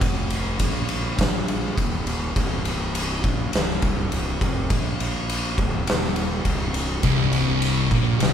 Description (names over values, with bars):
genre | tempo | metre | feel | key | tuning
stoner and doom metal | 103 BPM | 4/4 | straight | C minor | A4 = 440 Hz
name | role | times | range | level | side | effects
fuzz fingered electric bass | bass | 0.0-8.3 s | C1 to Bb1 | -26 LUFS | equal | overdrive
oversized low-tuned drum kit | drums | 0.0-8.3 s | kick drum, ride cymbal, snare drum | -23 LUFS | equal | none
thick fuzz guitar | riff | 7.0-8.3 s | C2 to Bb2 | -22 LUFS | left 7 dB | distortion
thick fuzz guitar | riff | 7.0-8.3 s | C2 to Bb2 | -23 LUFS | right 5 dB | distortion
room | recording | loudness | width
light reverb | band playing live in one room | -21 LUFS | side -8 dB against mid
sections
0.0-8.3 A section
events
none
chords
0.0 Cm